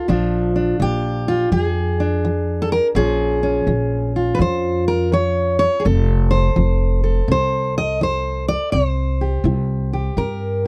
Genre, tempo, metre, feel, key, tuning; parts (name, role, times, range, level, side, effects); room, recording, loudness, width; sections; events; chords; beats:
acoustic country blues, solo or duo; 83 BPM; 4/4; swing 65% on 8ths; A4 = 445 Hz
fingerpicked steel-string acoustic guitar; melody; 0.0-10.7 s; F2 to Eb5; -21 LUFS; equal
upright bass; bass; 0.1-10.7 s; F1 to G2; -22 LUFS; equal
little or no reverb; dry, close 1970s-style studio recording; -19 LUFS; mono
0.0-10.7 A section
0.1 Bb7; 5.8 F; 8.7 C7
| 0.08 0.80 1.52 2.24 | 2.96 3.68 4.40 5.12 | 5.84 6.57 7.29 8.01 | 8.73 9.45 10.17